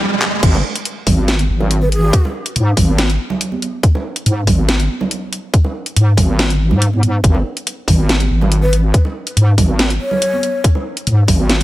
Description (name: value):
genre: deep dubstep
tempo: 141 BPM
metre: 4/4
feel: half-time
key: G# minor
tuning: A4 = 440 Hz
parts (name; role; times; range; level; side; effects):
- garage drum kit; drums; 0.2-11.6 s; crash cymbal, handclaps, hi-hat, snare drum; -19 LUFS; equal; none
- wobble bass; bass; 0.4-11.6 s; G#1 to G#2; -14 LUFS; equal; chorus
- electronic kick drum; drums; 0.4-11.4 s; none; -13 LUFS; equal; high-pass filter on kick
- bongos and congas; percussion; 0.5-11.6 s; none; -23 LUFS; right 4 dB; dub echo
- breathy mellow ney; melody; 1.8-2.2, 8.6-10.6 s; G#4 to C#5; -21 LUFS; left 1 dB; dub echo
room: digital ambience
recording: none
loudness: -13 LUFS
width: side -16 dB against mid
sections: 0.4-11.6 A section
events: break 0.0-0.4; drum fill 0.2; drop 0.4-11.6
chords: 0.4 G#5